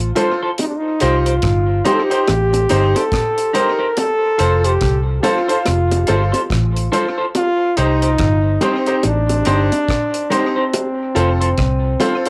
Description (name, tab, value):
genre	roots reggae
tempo	71 BPM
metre	4/4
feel	swing 61% on 16ths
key	C dorian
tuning	A4 = 441 Hz
part	clear trombone	melody	0.0-12.3 s	C4 to Bb4	-21 LUFS	equal	cassette tape, tape echo
part	vintage muted fingered electric bass	bass	0.0-12.0 s	F1 to C2	-20 LUFS	equal	transformer saturation
part	semi-hollow electric guitar	accompaniment	0.2-12.3 s	Eb4 to C5	-25 LUFS	equal	cassette tape, tape echo
part	bright upright piano	stabs	0.2-12.3 s	Eb4 to C5	-23 LUFS	equal	cassette tape
part	deep reggae drum kit	drums	0.2-12.3 s	hi-hat, kick drum, rim click	-26 LUFS	equal	cassette tape, analog delay
part	bongos	percussion	0.2-12.2 s	none	-26 LUFS	equal	none
room	moderate studio reverb, RT60 0.5 s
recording	home recording on cassette, faint mains hum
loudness	-17 LUFS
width	mono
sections	0.0-12.3 A section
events	none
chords	0.0 F; 0.6 Cm; 4.0 F; 7.3 Cm; 10.7 F